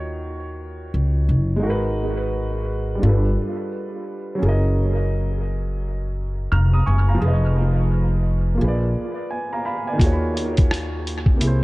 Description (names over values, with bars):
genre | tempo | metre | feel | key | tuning
lo-fi hip hop | 86 BPM | 4/4 | swing 64% on 16ths | Eb minor | A4 = 441 Hz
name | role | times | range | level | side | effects
dark upright piano | accompaniment | 0.0-11.6 s | C3 to F6 | -25 LUFS | right 1 dB | cassette tape, low-pass filter, tape echo
upright bass | bass | 0.0-11.6 s | F1 to Eb2 | -20 LUFS | equal | none
lo-fi sampler-style drum kit | drums | 10.0-11.6 s | hi-hat, kick drum, rim click | -18 LUFS | equal | none
room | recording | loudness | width
small room ambience | echo-heavy mix | -19 LUFS | side -20 dB against mid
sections
0.0-11.6 A section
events
none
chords
0.0 Ebm9; 1.6 Abm9; 3.0 G9; 4.4 Gb6; 7.2 Fm7b5; 8.6 Bb7b9; 10.0 Ebm11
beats
0.23 0.93 | 1.63 2.33 3.02 3.72 | 4.42 5.12 5.81 6.51 | 7.21 7.91 8.60 9.30 | 10.00 10.70 11.39